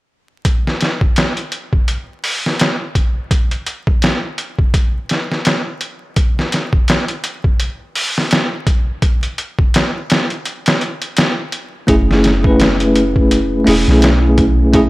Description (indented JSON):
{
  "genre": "trip hop",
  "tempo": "84 BPM",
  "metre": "4/4",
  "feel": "swing 57% on 16ths",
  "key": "F# minor",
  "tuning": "A4 = 439 Hz",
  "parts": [
    { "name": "trip hop sampler-style drum kit", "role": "drums", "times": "0.4-14.9 s", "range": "hi-hat, kick drum, snare drum", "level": "-15 LUFS", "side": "equal", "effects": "overdrive, studio reverb" },
    { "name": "bell-like tine electric piano", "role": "accompaniment", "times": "11.9-14.9 s", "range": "A3 to B4", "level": "-12 LUFS", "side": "equal", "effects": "tremolo, tape echo" },
    { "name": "soft 808-style bass", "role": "bass", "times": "11.9-14.9 s", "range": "E1 to B1", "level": "-16 LUFS", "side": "equal", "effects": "none" }
  ],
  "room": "light reverb",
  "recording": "dry, gritty hardware recording, vinyl crackle",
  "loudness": "-13 LUFS",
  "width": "side -20 dB against mid",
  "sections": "0.5-14.9 A section",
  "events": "none",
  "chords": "0.5 N.C.; 11.9 F#m7"
}